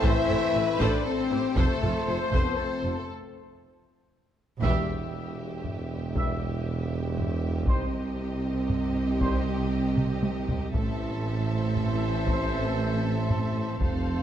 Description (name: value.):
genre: cinematic, epic orchestral film score.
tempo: 118 BPM.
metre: 3/4.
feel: straight.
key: unclear.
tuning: A4 = 440 Hz.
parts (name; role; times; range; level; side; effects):
warm symphonic violin section; melody; 0.0-14.2 s; A4 to F5; -38 LUFS; left 2 dB; none.
warm symphonic violin section; second line; 0.0-14.2 s; G4 to C5; -37 LUFS; left 2 dB; none.
warm symphonic viola section; accompaniment; 0.0-14.2 s; B3 to C5; -38 LUFS; equal; none.
dark French horn section; sustained chords; 0.0-14.2 s; A3 to G4; -33 LUFS; left 6 dB; none.
warm trombone section; sustained chords; 0.0-14.2 s; C3 to A3; -37 LUFS; right 3 dB; none.
dark trumpet section; stabs; 0.0-14.2 s; C4 to E5; -36 LUFS; left 1 dB; none.
dark symphonic cello section; bass; 0.0-14.2 s; E2 to C3; -33 LUFS; right 2 dB; none.
mellow tuba; bass; 0.0-14.2 s; E1 to C2; -32 LUFS; right 2 dB; none.
warm symphonic double bass section; bass; 0.0-14.2 s; E1 to C2; -33 LUFS; right 3 dB; none.
taiko ensemble; drums; 0.0-14.2 s; none; -29 LUFS; equal; none.
room: moderate scoring stage reverb, RT60 1.9 s.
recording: dark, warm production.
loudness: -25 LUFS.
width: side -10 dB against mid.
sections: 0.0-4.6 A section; 4.6-14.2 B section.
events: break 3.1-4.6; drum fill 3.9-4.6, 10.0-10.7; build-up 4.6-14.2; band accent 4.6-5.1.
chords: 0.0 Am; 1.6 F; 4.6 Em; 7.7 Cm; 10.7 Am.